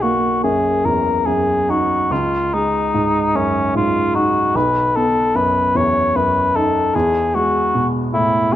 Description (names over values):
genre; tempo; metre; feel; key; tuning
classical, impressionist duo for cor anglais and grand piano; 47-52 BPM (dotted quarters); 6/8; rubato; B mixolydian; A4 = 438 Hz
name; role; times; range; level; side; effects
mellow cor anglais; melody; 0.0-8.6 s; C#4 to C#5; -16 LUFS; left 2 dB; none
clear baby grand piano; accompaniment; 0.0-8.6 s; B1 to D#4; -19 LUFS; right 1 dB; none
room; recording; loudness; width
moderate scoring stage reverb, RT60 1.6 s; close, detailed microphones; -15 LUFS; side -12 dB against mid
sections
0.0-8.6 A section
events
none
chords
0.0 Bmaj7; 2.1 C#sus2; 4.5 B; 6.9 E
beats
0.85 | 2.11 3.35 | 4.55 5.76 | 6.95 8.13